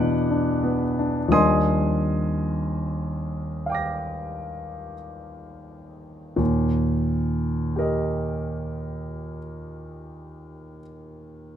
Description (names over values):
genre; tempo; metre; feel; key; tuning
classical, impressionist solo piano; 41-64 BPM; 4/4; rubato; Eb major; A4 = 441 Hz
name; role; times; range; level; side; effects
clear concert grand piano; solo; 0.0-11.6 s; Eb2 to Bb6; -23 LUFS; equal; none
room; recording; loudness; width
moderate recital hall reverb, RT60 1.4 s; close, detailed microphones; -22 LUFS; side -10 dB against mid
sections
0.0-6.4 A section; 6.4-11.6 B section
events
slowing down 0.0-6.4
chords
0.0 Esus2; 1.3 Ebmaj9; 6.4 Eb